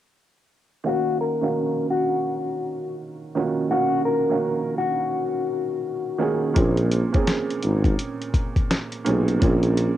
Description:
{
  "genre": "hip hop, boom-bap hip-hop",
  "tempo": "84 BPM",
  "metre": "4/4",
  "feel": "swing 62% on 16ths",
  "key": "Eb dorian",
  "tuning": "A4 = 440 Hz",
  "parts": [
    { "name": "clear upright piano", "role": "accompaniment", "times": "0.8-10.0 s", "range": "Bb2 to F5", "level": "-25 LUFS", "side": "right 4 dB", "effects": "cassette tape, high-pass filter, low-pass filter" },
    { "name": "mellow electric guitar", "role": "melody", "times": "0.9-6.5 s", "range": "Gb4 to Bb4", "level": "-24 LUFS", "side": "left 4 dB", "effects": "wide subtle chorus, high-pass filter, low-pass filter, cassette tape, tape echo" },
    { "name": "warm tuba", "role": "bass", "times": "6.6-9.9 s", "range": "Ab1 to Cb2", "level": "-20 LUFS", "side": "left 1 dB", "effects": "tube saturation" },
    { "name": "dusty soul sampler-style drum kit", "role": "drums", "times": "6.6-10.0 s", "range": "hi-hat, kick drum, snare drum", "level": "-22 LUFS", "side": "left 1 dB", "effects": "none" }
  ],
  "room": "studio reverb",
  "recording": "home recording on cassette",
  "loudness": "-20 LUFS",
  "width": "side -12 dB against mid",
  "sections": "0.8-10.0 A section",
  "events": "filter sweep 0.8-10.0",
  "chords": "0.8 Ebm9; 6.6 Bbm9",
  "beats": "| 0.85 1.56 2.28 2.99 | 3.71 4.42 5.13 5.85 | 6.56 7.28 7.99 8.71 | 9.42"
}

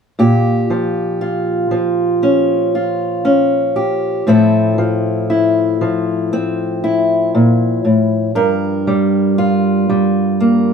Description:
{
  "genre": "folk",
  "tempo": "59 BPM",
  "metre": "4/4",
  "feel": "straight",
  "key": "unclear",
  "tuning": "A4 = 440 Hz",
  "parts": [
    { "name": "fingerpicked steel-string acoustic guitar", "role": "accompaniment", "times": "0.2-10.7 s", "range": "G2 to Bb4", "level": "-13 LUFS", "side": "equal", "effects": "none" }
  ],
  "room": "moderate small room reverb, RT60 0.5 s",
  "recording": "band playing live in one room",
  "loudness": "-13 LUFS",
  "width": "side -6 dB against mid",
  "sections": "0.2-10.7 A section",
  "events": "none",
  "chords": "0.2 Bbm6; 4.3 Fmaj7/A; 8.3 Gm7",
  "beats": "| 0.18 1.20 2.22 3.24 | 4.26 5.29 6.30 7.33 | 8.35 9.37 10.39"
}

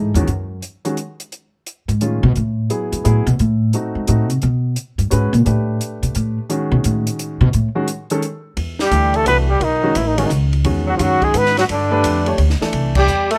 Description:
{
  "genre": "jazz, small-group swing and bop",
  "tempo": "173 BPM",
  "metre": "3/4",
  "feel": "swing 65% on 8ths",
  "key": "unclear",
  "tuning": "A4 = 441 Hz",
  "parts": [
    { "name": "warm upright piano", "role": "accompaniment", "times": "0.0-13.1 s", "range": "E2 to C#5", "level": "-24 LUFS", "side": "equal", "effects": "none" },
    { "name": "upright bass", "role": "bass", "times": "0.0-13.4 s", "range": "A1 to B#2", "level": "-19 LUFS", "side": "equal", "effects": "none" },
    { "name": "compact cocktail drum kit", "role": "drums", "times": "0.2-13.4 s", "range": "crash cymbal, hi-hat, kick drum, ride cymbal, snare drum", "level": "-28 LUFS", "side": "equal", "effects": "none" },
    { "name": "breathy flugelhorn", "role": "melody", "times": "8.8-13.4 s", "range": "C#4 to B4", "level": "-20 LUFS", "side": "equal", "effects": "none" },
    { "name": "breathy alto saxophone", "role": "second line", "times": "8.8-13.4 s", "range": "C#3 to B3", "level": "-25 LUFS", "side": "equal", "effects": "none" }
  ],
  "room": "light reverb",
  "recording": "close, detailed microphones",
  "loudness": "-18 LUFS",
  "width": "mono",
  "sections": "0.3-8.6 A section; 8.6-13.4 B section",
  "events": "upright bass solo 0.0-8.6; band accent 12.9",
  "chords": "0.3 N.C.; 1.3 C#7b13; 2.3 F#m9; 3.4 G#7b9 (rootless); 4.4 C#5; 5.5 Gadd9; 6.5 Amaj7; 7.5 Amaj7#11; 8.6 C69; 9.6 B9; 10.6 Emaj9; 11.7 G7; 12.7 Cadd9",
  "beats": "| 0.27 0.62 0.96 | 1.31 1.66 2.00 | 2.35 2.69 3.04 | 3.38 3.73 4.08 | 4.42 4.76 5.11 | 5.46 5.80 6.15 | 6.49 6.84 7.18 | 7.53 7.87 8.22 | 8.56 8.91 9.26 | 9.60 9.95 10.30 | 10.65 10.99 11.34 | 11.69 12.04 12.38 | 12.73 13.08"
}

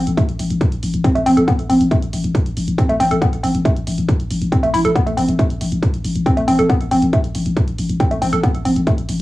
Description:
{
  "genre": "driving peak-time techno",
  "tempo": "138 BPM",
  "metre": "4/4",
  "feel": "straight",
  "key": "A minor",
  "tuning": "A4 = 440 Hz",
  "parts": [
    { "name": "growling 808-style bass", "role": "bass", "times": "0.0-9.2 s", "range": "A1", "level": "-20 LUFS", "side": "left 1 dB", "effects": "overdrive, sidechain pumping, low-pass filter" },
    { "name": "electronic hi-hat", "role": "drums", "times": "0.1-9.2 s", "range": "none", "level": "-34 LUFS", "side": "right 1 dB", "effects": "sidechain pumping on hats, cassette tape" },
    { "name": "woody wave-folded pluck", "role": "riff", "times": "0.2-8.9 s", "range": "A3 to A4", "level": "-17 LUFS", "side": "equal", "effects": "chorus, sidechain pumping, cassette tape, analog delay" },
    { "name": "electronic kick drum", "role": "drums", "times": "0.2-9.0 s", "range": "none", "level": "-18 LUFS", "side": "equal", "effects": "cassette tape" }
  ],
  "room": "moderate studio reverb, RT60 0.6 s",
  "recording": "home recording on cassette, small room ambience",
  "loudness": "-15 LUFS",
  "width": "side -17 dB against mid",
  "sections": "0.0-9.2 A section",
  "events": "none",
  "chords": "none",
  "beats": "| 0.17 0.61 1.04 1.48 | 1.91 2.35 2.78 3.22 | 3.65 4.09 4.52 4.96 | 5.39 5.83 6.26 6.70 | 7.13 7.57 8.00 8.44 | 8.87"
}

